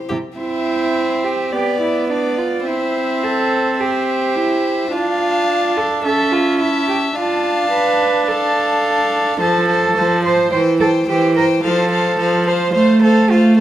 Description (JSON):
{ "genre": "quick classical-period movement for string quartet", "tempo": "107 BPM", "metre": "4/4", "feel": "straight", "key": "C major, F major from 9.4 s", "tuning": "A4 = 440 Hz", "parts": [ { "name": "rich violin", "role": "melody", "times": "0.0-13.6 s", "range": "D5 to A5", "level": "-26 LUFS", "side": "left 9 dB", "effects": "none" }, { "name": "rich violin", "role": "second line", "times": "0.1-13.6 s", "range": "G4 to F5", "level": "-21 LUFS", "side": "left 3 dB", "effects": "none" }, { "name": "warm viola", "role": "accompaniment", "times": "0.1-13.6 s", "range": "E3 to E4", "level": "-18 LUFS", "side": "right 2 dB", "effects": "none" }, { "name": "warm cello", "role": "bass", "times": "0.1-13.6 s", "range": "C3 to C5", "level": "-19 LUFS", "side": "right 4 dB", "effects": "none" } ], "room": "moderate recital hall reverb, RT60 1.6 s", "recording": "none", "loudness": "-14 LUFS", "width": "side -12 dB against mid", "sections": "0.4-13.6 A section", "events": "none", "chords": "0.4 C; 1.5 G/B; 2.7 C; 4.9 Dm; 6.0 A/C#; 7.2 Dm; 9.4 F; 10.5 C/E; 11.6 F; 12.7 F/A" }